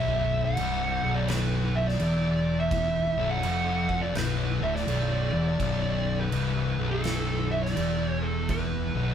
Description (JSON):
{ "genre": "stoner and doom metal", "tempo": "83 BPM", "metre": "4/4", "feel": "swing 64% on 8ths", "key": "B minor", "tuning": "A4 = 436 Hz", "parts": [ { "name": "fuzz lead guitar", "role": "melody", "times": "0.0-9.1 s", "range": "A4 to F#5", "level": "-30 LUFS", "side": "right 2 dB", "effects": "distortion" }, { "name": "thick fuzz guitar", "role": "riff", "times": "0.0-9.1 s", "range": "B1 to E#2", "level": "-29 LUFS", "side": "left 6 dB", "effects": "distortion" }, { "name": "thick fuzz guitar", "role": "riff", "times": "0.0-9.1 s", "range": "B1 to E#2", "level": "-32 LUFS", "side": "right 6 dB", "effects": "distortion" }, { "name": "growling fingered electric bass", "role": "bass", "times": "0.0-9.1 s", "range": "B0 to E#1", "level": "-33 LUFS", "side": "equal", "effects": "overdrive" }, { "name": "oversized low-tuned drum kit", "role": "drums", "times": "0.6-8.7 s", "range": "crash cymbal, kick drum, snare drum", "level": "-35 LUFS", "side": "right 1 dB", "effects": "none" } ], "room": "moderate studio reverb, RT60 0.6 s", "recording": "band playing live in one room", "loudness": "-24 LUFS", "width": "side -8 dB against mid", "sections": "0.0-9.1 A section", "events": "none", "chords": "0.0 Bm", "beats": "0.57 1.29 2.00 | 2.72 3.44 4.16 4.88 | 5.60 6.33 7.05 7.77 | 8.50" }